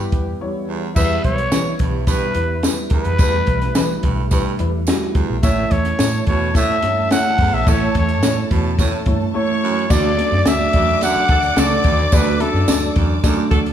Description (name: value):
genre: uptempo 1960s-style soul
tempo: 108 BPM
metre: 4/4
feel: straight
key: D major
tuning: A4 = 441 Hz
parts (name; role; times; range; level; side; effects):
- growling trumpet; melody; 0.0-13.0 s; G4 to F#5; -20 LUFS; left 1 dB; none
- dark upright piano; accompaniment; 0.0-13.6 s; G3 to E5; -23 LUFS; right 1 dB; none
- mellow tonewheel organ; sustained chords; 0.0-13.7 s; D3 to E4; -28 LUFS; right 2 dB; slow rotary speaker, chorus vibrato
- raspy baritone saxophone; riff; 0.0-13.5 s; D2 to B2; -28 LUFS; right 6 dB; none
- vintage muted picked electric bass; bass; 0.0-13.7 s; A1 to E3; -22 LUFS; equal; none
- compact cocktail drum kit; drums; 0.1-13.7 s; crash cymbal, hi-hat, kick drum, snare drum; -19 LUFS; equal; none
- tambourine; percussion; 1.0-13.4 s; none; -31 LUFS; right 6 dB; none
- warm studio string section; second line; 5.4-13.7 s; A4 to D6; -28 LUFS; left 1 dB; none
- bright saxophone section; second line; 7.7-13.6 s; C#4 to A4; -29 LUFS; equal; none
room: wet large studio reverb, RT60 1.3 s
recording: band playing live in one room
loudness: -15 LUFS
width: side -9 dB against mid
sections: 1.0-9.9 A section; 9.9-13.7 B section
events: break 0.4-1.0; band accent 7.7-9.9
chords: 0.0 Em; 5.4 A; 9.9 D